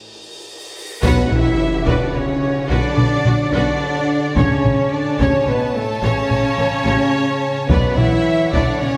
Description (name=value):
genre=cinematic, epic orchestral film score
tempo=72 BPM (dotted quarters)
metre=12/8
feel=straight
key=B minor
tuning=A4 = 439 Hz
part: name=cymbal swell and sub drop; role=sound effects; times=0.0-4.4 s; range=none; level=-30 LUFS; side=equal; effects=none
part: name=rich studio violin section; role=melody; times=1.0-9.0 s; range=A4 to E5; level=-29 LUFS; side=equal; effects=none
part: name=large flute ensemble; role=second line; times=1.0-9.0 s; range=A4 to E5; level=-30 LUFS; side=equal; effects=none
part: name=rich chamber violin section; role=second line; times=1.0-9.0 s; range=C#5 to A5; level=-29 LUFS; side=equal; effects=none
part: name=rich symphonic viola section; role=accompaniment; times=1.0-8.9 s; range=F#4 to D5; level=-29 LUFS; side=equal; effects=none
part: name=dark French horn section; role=sustained chords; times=1.0-9.0 s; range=A3 to E4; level=-25 LUFS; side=equal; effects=none
part: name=dark trombone section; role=sustained chords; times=1.0-9.0 s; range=A2 to E3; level=-26 LUFS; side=equal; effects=none
part: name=rich symphonic cello section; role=bass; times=1.0-9.0 s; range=A3 to E4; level=-28 LUFS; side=equal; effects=none
part: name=rich symphonic double bass section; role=bass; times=1.0-8.9 s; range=A1 to B1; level=-25 LUFS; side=equal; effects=none
part: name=taiko ensemble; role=drums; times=1.0-9.0 s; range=none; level=-24 LUFS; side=equal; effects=none
part: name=tam-tam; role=percussion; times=1.0-3.2 s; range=none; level=-34 LUFS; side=equal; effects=none
part: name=timpani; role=percussion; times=1.0-1.8, 7.7-8.5 s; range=B2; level=-28 LUFS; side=equal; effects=none
room=wet concert hall reverb, RT60 2.3 s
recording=none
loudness=-17 LUFS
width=mono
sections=0.0-1.0 A section; 1.0-9.0 B section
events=break 0.0-1.0; cymbal swell 0.0-1.0; band accent 1.0-1.6; impact 1.0-4.4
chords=0.0 N.C.; 1.0 Bmadd9; 4.4 A; 7.7 Bmadd9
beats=0.20 | 1.03 1.86 2.70 3.53 | 4.36 5.20 6.03 6.86 | 7.70 8.53